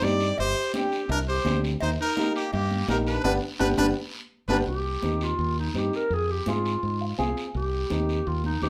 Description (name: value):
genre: latin, cumbia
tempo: 168 BPM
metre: 4/4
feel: straight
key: C minor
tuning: A4 = 440 Hz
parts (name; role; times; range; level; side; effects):
- brilliant trumpet; melody; 0.0-4.6 s; G4 to D5; -31 LUFS; equal; none
- growling clarinet; second line; 0.0-8.7 s; Bb3 to Bb4; -32 LUFS; equal; none
- dark upright piano; accompaniment; 0.0-8.7 s; Bb3 to Ab5; -31 LUFS; equal; none
- fingered electric bass; bass; 0.0-8.7 s; G1 to Ab2; -31 LUFS; equal; none
- congas; percussion; 0.0-8.7 s; none; -37 LUFS; equal; none
- cowbell and timbales; percussion; 0.0-4.6 s; none; -40 LUFS; equal; none
- guiro; percussion; 0.0-8.7 s; none; -42 LUFS; equal; none
room: wet studio ambience, RT60 0.5 s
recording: band playing live in one room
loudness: -26 LUFS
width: mono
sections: 0.0-4.7 A section; 4.7-8.7 B section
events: band accent 3.2-4.7; drum fill 4.1-4.7; clarinet solo 4.7-8.7; upright piano fill 6.8-7.6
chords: 0.4 Gsus4; 1.8 Eb; 3.2 G; 4.7 Cm; 6.1 Fm; 7.6 Cm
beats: 0.03 | 0.39 0.74 1.10 1.46 | 1.82 2.17 2.53 2.89 | 3.25 3.61 3.96 4.32 | 4.68 5.04 5.40 5.76 | 6.12 6.47 6.83 7.19 | 7.55 7.91 8.27 8.63